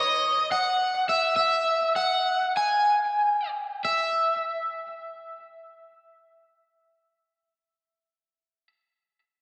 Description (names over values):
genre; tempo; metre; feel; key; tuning
rock; 88-109 BPM; 4/4; straight; unclear; A4 = 440 Hz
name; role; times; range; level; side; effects
cranked stack guitar; melody; 0.0-8.7 s; D#5 to G#5; -25 LUFS; equal; overdrive, analog chorus, analog delay
room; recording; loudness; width
wet plate reverb, RT60 2.6 s; dreamy mix soaked in reverb; -24 LUFS; mono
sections
0.0-3.9 A section; 3.9-9.3 B section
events
slowing down 0.0-3.9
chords
none